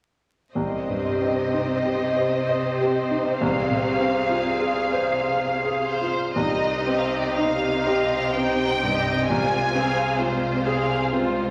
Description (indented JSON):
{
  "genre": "classical, romantic movement for piano and orchestra",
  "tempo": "62 BPM",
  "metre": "3/4",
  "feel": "uneven beats, rubato",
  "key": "C minor",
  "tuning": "A4 = 439 Hz",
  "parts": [
    { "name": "dark symphonic violin section", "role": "second line", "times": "0.5-11.5 s", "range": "Eb4 to F5", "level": "-28 LUFS", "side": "equal", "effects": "none" },
    { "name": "rich symphonic viola section", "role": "accompaniment", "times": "0.5-11.5 s", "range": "Ab3 to Ab4", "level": "-32 LUFS", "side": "equal", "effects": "none" },
    { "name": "warm symphonic cello section", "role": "bass", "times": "0.5-11.5 s", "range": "C3", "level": "-32 LUFS", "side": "equal", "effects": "none" },
    { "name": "clear grand piano", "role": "melody", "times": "0.6-11.5 s", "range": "C2 to F5", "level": "-28 LUFS", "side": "equal", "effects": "none" },
    { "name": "warm symphonic violin section", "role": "melody", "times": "5.8-11.1 s", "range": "C5 to Ab5", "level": "-29 LUFS", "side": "equal", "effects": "none" },
    { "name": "rich symphonic double bass section", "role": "bass", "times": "6.4-11.5 s", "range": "C2", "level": "-36 LUFS", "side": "equal", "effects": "none" }
  ],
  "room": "wet stone room reverb, RT60 1.3 s",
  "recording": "vinyl crackle",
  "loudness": "-23 LUFS",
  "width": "mono",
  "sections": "0.5-6.4 A section; 6.4-11.5 B section",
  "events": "none",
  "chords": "0.5 Cm; 3.4 Fm/C; 6.4 Cm; 9.3 Fm/C"
}